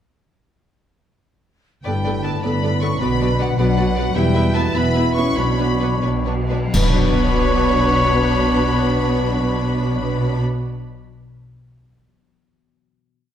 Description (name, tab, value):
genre	cinematic, heroic adventure film score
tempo	83-105 BPM (dotted quarters)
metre	6/8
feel	straight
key	B minor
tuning	A4 = 440 Hz
part	warm symphonic violin section	second line	1.8-10.4 s	B4 to E5	-30 LUFS	left 2 dB	none
part	clear symphonic violin section	melody	1.9-10.4 s	F#5 to C#6	-28 LUFS	left 3 dB	none
part	mellow flute section	second line	1.9-10.4 s	B4 to C#6	-28 LUFS	left 4 dB	none
part	warm symphonic viola section	accompaniment	1.9-10.4 s	B3 to A4	-27 LUFS	right 3 dB	none
part	bright trombone section	sustained chords	1.9-10.4 s	A2 to E4	-27 LUFS	right 3 dB	none
part	mellow French horn section	sustained chords	1.9-10.4 s	F#3 to C#4	-24 LUFS	left 1 dB	none
part	concert harp	arpeggios	1.9-11.2 s	G2 to C#5	-29 LUFS	left 10 dB	none
part	clear trumpet	stabs	1.9-10.4 s	B4 to C#5	-26 LUFS	left 1 dB	none
part	warm symphonic cello section	bass	1.9-10.4 s	E2 to B2	-26 LUFS	right 1 dB	none
part	warm symphonic double bass section	bass	1.9-10.4 s	E1 to B1	-23 LUFS	right 1 dB	none
part	cymbal swell, clash cymbals and concert bass drum	percussion	4.2-7.7 s	none	-23 LUFS	equal	none
room	moderate scoring stage reverb, RT60 1.6 s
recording	none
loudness	-16 LUFS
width	side -9 dB against mid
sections	1.9-6.7 theme; 6.7-9.6 final chord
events	slowing down 3.6-6.7; band accent 6.7-7.2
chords	1.9 Gadd9; 3.0 Bm; 4.2 Em; 5.4 Bmadd9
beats	| 1.86 2.44 | 3.02 3.59 | 4.16 4.76 | 5.38 6.04 | 6.74 7.46 | 8.18 8.90